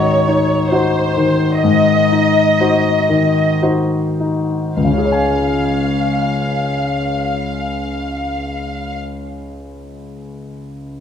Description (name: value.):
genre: cinematic.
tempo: 50-69 BPM.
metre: 3/4.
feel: rubato.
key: Db major.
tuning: A4 = 443 Hz.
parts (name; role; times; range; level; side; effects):
muted symphonic violin section; melody; 0.0-8.9 s; C5 to F5; -18 LUFS; equal; none.
clear concert grand piano; accompaniment; 0.0-11.0 s; Db2 to Ab5; -16 LUFS; left 2 dB; none.
room: wet scoring stage reverb, RT60 1.6 s.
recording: dark, warm production.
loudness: -14 LUFS.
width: side -8 dB against mid.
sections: 0.0-4.8 A section; 4.8-8.2 B section.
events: slowing down 0.0-4.8.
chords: 0.0 Ab7; 4.8 Db.